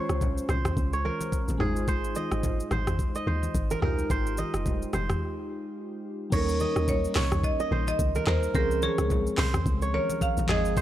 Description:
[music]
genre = afrobeats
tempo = 108 BPM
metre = 4/4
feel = swing 58% on 16ths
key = Ab major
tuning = A4 = 440 Hz
[part]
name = glassy digital keys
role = accompaniment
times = 0.0-10.8 s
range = Fb3 to C5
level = -33 LUFS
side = left 1 dB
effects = chorus
[part]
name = kora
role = riff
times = 0.0-10.8 s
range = Ab4 to Eb5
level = -33 LUFS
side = right 4 dB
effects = tape echo
[part]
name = deep log drum bass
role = bass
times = 0.1-10.8 s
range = F1 to Eb2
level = -29 LUFS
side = equal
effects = none
[part]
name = afro-pop drum kit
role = drums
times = 0.1-10.8 s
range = crash cymbal, handclaps, hi-hat, kick drum, rim click, shaker, toms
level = -30 LUFS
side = equal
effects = none
[part]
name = congas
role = percussion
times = 0.2-10.5 s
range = none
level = -36 LUFS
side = left 2 dB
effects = none
[part]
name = marimba with hard mallets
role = melody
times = 6.3-10.8 s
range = Ab4 to F5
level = -30 LUFS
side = right 1 dB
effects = none
[sound]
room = little or no reverb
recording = dry, gritty hardware recording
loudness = -24 LUFS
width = side -12 dB against mid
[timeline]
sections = 0.0-6.3 A section; 6.3-10.8 B section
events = break 5.2-6.3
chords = 0.0 Dbmaj7; 1.6 Ab6; 6.3 Eb7; 8.5 Dbmaj7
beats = 0.21 0.77 1.32 | 1.88 2.44 2.99 3.55 | 4.10 4.66 5.21 5.77 | 6.32 6.88 7.43 7.99 | 8.55 9.10 9.66 10.21 | 10.77

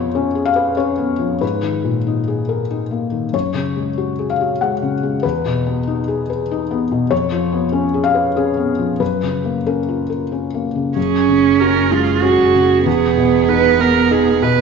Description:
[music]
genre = neoclassical piano and strings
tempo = 95 BPM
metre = 3/4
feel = rubato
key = F# major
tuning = A4 = 440 Hz
[part]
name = felt-muted upright piano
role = accompaniment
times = 0.0-14.6 s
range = E2 to F#5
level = -17 LUFS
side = left 4 dB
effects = none
[part]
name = dark cello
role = second line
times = 11.0-14.4 s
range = B3 to F#4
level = -14 LUFS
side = right 8 dB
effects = none
[part]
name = warm viola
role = accompaniment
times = 11.0-14.6 s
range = G#4 to B4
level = -18 LUFS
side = right 12 dB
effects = none
[part]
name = warm double bass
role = bass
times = 11.0-14.6 s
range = E1 to F#1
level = -24 LUFS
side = right 2 dB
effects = none
[sound]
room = wet echo chamber reverb, RT60 1.7 s, small room ambience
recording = 1960s-style stereo, nothing above 7.6 kHz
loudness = -15 LUFS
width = side -5 dB against mid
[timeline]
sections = 0.0-11.0 A section; 11.0-14.6 A section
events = none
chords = 0.0 C#7/E#; 1.4 G#madd9; 3.3 F#sus2; 5.2 Emaj7; 7.1 C#7/E#; 9.0 F#maj7; 11.0 F#sus2; 12.9 Emaj7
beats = 0.15 0.78 | 1.42 2.06 2.70 | 3.33 3.97 4.60 | 5.23 5.86 6.49 | 7.12 7.73 8.36 | 9.00 9.66 10.32 | 10.97 11.60 12.23 | 12.87 13.49 14.11

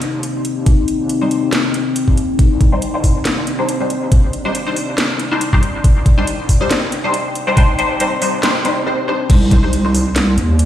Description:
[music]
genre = deep dubstep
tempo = 139 BPM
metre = 4/4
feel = swing 55% on 16ths, half-time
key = C minor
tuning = A4 = 439 Hz
[part]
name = deep dark ambient pad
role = sustained chords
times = 0.0-10.7 s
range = C4 to G5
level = -21 LUFS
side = left 2 dB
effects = chorus, built-in reverb
[part]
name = wobble bass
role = bass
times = 0.0-10.7 s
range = G1 to A2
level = -21 LUFS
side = right 1 dB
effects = chorus, high-pass filter
[part]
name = garage drum kit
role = drums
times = 0.0-10.7 s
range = crash cymbal, hi-hat, snare drum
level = -21 LUFS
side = equal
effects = studio reverb
[part]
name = electronic kick drum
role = drums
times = 0.7-9.6 s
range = none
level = -12 LUFS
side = equal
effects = studio reverb
[part]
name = filtered dub chord stab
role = stabs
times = 1.2-9.9 s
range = G3 to C5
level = -19 LUFS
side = left 1 dB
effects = phaser, ensemble chorus, dub echo
[sound]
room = moderate echo chamber reverb, RT60 1.7 s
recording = played on a big sound system in a bare room, stone room reverb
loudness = -13 LUFS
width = side -11 dB against mid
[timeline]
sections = 0.0-9.3 A section; 9.3-10.7 B section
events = build-up 0.0-9.3; filter sweep on ambient pad 0.0-9.3; break 8.9-9.3; drop 9.3-10.7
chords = 0.0 Cmadd9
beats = 0.23 | 0.67 1.10 1.53 1.96 | 2.39 2.82 3.25 3.69 | 4.12 4.55 4.98 5.41 | 5.84 6.28 6.71 7.14 | 7.57 8.00 8.44 8.87 | 9.30 9.73 10.16 10.59

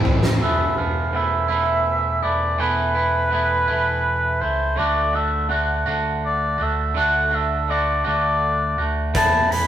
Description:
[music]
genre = quiet-loud alternative rock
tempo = 55 BPM (dotted quarters)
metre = 6/8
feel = straight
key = unclear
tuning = A4 = 440 Hz
[part]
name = warm oboe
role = melody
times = 0.0-9.7 s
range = B4 to B5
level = -21 LUFS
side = equal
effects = none
[part]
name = overdriven picked electric bass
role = bass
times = 0.0-9.7 s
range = E1 to E2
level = -26 LUFS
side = equal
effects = none
[part]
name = oversized low-tuned drum kit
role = drums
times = 0.1-0.4, 9.1-9.7 s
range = hi-hat, kick drum, snare drum, toms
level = -25 LUFS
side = equal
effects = none
[part]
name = twangy electric guitar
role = arpeggios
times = 0.4-9.7 s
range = D3 to F#4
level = -23 LUFS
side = right 3 dB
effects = none
[sound]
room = wet studio reverb, RT60 0.6 s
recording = rough rehearsal-room recording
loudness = -18 LUFS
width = side -10 dB against mid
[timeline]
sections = 0.4-9.7 A section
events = drum fill 0.0-0.4; half time 0.4-9.7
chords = 0.4 Esus4; 4.8 D; 9.2 Esus4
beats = | 0.40 1.49 | 2.58 3.68 | 4.77 5.87 | 6.96 8.06 | 9.15

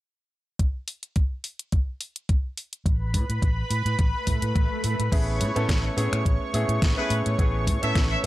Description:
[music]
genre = nu-disco, nu disco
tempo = 106 BPM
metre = 4/4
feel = swing 54% on 16ths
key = A major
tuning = A4 = 440 Hz
[part]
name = electronic kick drum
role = drums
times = 0.6-8.1 s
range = none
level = -23 LUFS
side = equal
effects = none
[part]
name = pop drum kit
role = drums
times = 0.6-8.3 s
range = crash cymbal, finger snaps, hi-hat, snare drum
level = -31 LUFS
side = equal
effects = overdrive
[part]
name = lush unison pad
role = sustained chords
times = 2.9-8.3 s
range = B4 to C#6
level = -31 LUFS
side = right 1 dB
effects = chorus, sidechain pumping
[part]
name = vintage muted fingered electric bass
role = bass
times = 2.9-8.3 s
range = A1 to A2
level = -26 LUFS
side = equal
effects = sidechain pumping
[part]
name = swell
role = sound effects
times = 4.2-5.1 s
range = none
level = -35 LUFS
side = right 2 dB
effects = none
[part]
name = bright grand piano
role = accompaniment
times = 5.1-8.3 s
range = A3 to A4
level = -29 LUFS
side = equal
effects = sidechain pumping
[part]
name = muted trumpet section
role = melody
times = 7.0-8.3 s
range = B4 to E5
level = -30 LUFS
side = equal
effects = none
[sound]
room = little or no reverb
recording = dark, warm production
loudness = -22 LUFS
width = side -16 dB against mid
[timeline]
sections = 0.6-5.1 A section; 5.1-8.3 B section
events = swell 4.2-5.1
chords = 0.6 Asus2; 5.1 Amaj9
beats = | 0.60 1.16 1.73 2.29 | 2.86 3.43 3.99 4.56 | 5.12 5.69 6.26 6.82 | 7.39 7.96

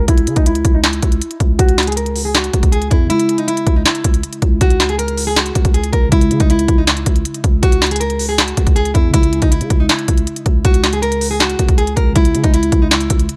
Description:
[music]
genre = hip hop, trap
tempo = 159 BPM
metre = 4/4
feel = half-time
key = C# dorian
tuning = A4 = 442 Hz
[part]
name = nylon-string guitar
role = melody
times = 0.0-13.4 s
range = D#4 to A#4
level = -21 LUFS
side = equal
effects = low-pass filter, analog delay
[part]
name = growling 808-style bass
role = bass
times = 0.0-13.3 s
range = C#2 to C#3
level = -22 LUFS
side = equal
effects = none
[part]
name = trap drum kit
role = drums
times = 0.1-13.4 s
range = handclaps, hi-hat, kick drum, snare drum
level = -16 LUFS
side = equal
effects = none
[part]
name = muted felt-like synth keys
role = accompaniment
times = 3.1-13.4 s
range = C#3 to E4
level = -26 LUFS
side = equal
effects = chorus, low-pass filter
[sound]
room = digital ambience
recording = dry, gritty hardware recording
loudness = -14 LUFS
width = mono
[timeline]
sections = 0.0-13.4 A section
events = filter sweep 0.0-3.1; kick muted 3.1-3.5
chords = 0.0 C#m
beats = | 0.08 0.46 0.84 1.21 | 1.59 1.97 2.35 2.72 | 3.10 3.48 3.85 4.23 | 4.61 4.99 5.37 5.74 | 6.12 6.50 6.87 7.25 | 7.63 8.01 8.38 8.76 | 9.14 9.52 9.89 10.27 | 10.65 11.03 11.40 11.78 | 12.16 12.54 12.91 13.29

